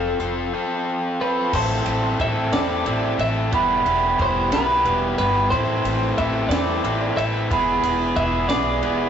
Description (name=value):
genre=indie rock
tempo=60 BPM (dotted quarters)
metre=6/8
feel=straight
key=A minor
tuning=A4 = 440 Hz
part: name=twelve-string electric guitar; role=melody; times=0.0-9.1 s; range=A4 to E5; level=-24 LUFS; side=equal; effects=none
part: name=crunchy overdriven guitar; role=riff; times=0.0-9.1 s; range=E3 to A4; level=-24 LUFS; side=left 3 dB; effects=none
part: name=overdriven electric guitar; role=riff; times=0.0-9.1 s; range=A2 to A4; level=-29 LUFS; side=right 4 dB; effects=none
part: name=upright bass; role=bass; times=0.0-9.1 s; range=E1 to E2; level=-27 LUFS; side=equal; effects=none
part: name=compact cocktail drum kit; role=drums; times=0.2-9.0 s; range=crash cymbal, hi-hat, kick drum, ride cymbal, snare drum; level=-28 LUFS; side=right 1 dB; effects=none
part: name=glockenspiel with rubber mallets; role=second line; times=1.5-9.1 s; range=A5 to C6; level=-25 LUFS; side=right 5 dB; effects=tape echo
room=moderate small room reverb, RT60 0.5 s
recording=rough rehearsal-room recording, warm saturation, nothing above 7.9 kHz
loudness=-18 LUFS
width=side -8 dB against mid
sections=0.0-1.5 A section; 1.5-9.1 B section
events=none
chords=0.0 F; 1.5 Am; 3.5 Em; 5.5 Am; 7.5 E